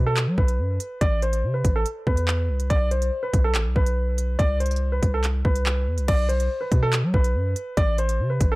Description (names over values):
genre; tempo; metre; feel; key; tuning
hip hop, drill; 142 BPM; 4/4; half-time; B phrygian; A4 = 444 Hz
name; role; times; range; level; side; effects
warm grand piano; melody; 0.0-8.6 s; A4 to D5; -27 LUFS; equal; none
long sustained 808-style bass; bass; 0.0-8.6 s; A1 to F#3; -23 LUFS; equal; none
drill drum kit; drums; 0.2-8.5 s; crash cymbal, handclaps, hi-hat, kick drum; -22 LUFS; equal; none
room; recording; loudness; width
little or no reverb; dark, warm production; -20 LUFS; side -21 dB against mid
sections
0.0-6.1 A section; 6.1-8.6 B section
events
none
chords
0.0 B5; 1.0 Am; 2.7 N.C.; 6.1 B5; 7.8 Am